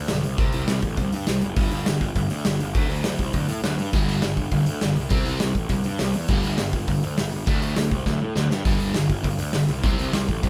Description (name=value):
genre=punk rock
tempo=203 BPM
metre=4/4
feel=straight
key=unclear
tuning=A4 = 440 Hz
part: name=fuzz picked electric bass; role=bass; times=0.0-10.5 s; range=F#1 to A2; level=-30 LUFS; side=equal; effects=overdrive
part: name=distorted electric guitar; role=riff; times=0.1-10.5 s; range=G2 to C4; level=-29 LUFS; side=equal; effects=distortion
part: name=big rock drum kit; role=drums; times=0.1-10.5 s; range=hi-hat, kick drum, snare drum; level=-27 LUFS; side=equal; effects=none
part: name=sludgy distorted guitar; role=riff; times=3.9-10.5 s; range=G2 to D4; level=-31 LUFS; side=equal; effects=overdrive
room=light reverb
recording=band playing live in one room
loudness=-23 LUFS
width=mono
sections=0.0-10.5 A section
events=drum fill 8.1-8.7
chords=0.2 C5; 1.6 G5; 2.8 D; 3.9 G5; 5.0 C5; 6.3 G5; 7.5 D; 8.7 G5; 9.7 C5